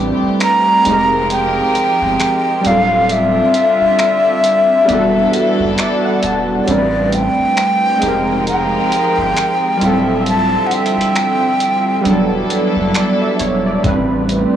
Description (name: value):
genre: contemporary R&B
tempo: 67 BPM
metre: 4/4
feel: swing 58% on 16ths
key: unclear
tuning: A4 = 439 Hz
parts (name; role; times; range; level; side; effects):
- warm analog keys; accompaniment; 0.0-14.6 s; F#3 to A5; -17 LUFS; right 1 dB; chorus
- rich studio string section; sustained chords; 0.0-14.6 s; D3 to E5; -20 LUFS; equal; none
- saturated sub bass; bass; 0.0-14.4 s; D1 to A1; -24 LUFS; equal; none
- breathy jazz flute; melody; 0.4-12.5 s; C#5 to Bb5; -15 LUFS; equal; tape echo
- dusty soul sampler-style drum kit; drums; 0.4-14.5 s; finger snaps, hi-hat, kick drum; -21 LUFS; equal; soft clipping on snare
room: light reverb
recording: blown-out, overdriven recording, overdrive, small room ambience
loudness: -12 LUFS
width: side -10 dB against mid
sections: 0.0-14.6 A section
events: break 0.0-13.8; synth keys fill 5.3-6.7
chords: 0.0 Am11; 0.9 Fm11; 2.6 Dm11; 4.9 Em11; 6.7 Am11; 8.0 Fm11; 9.8 Dm11; 12.1 Em11; 13.8 Am11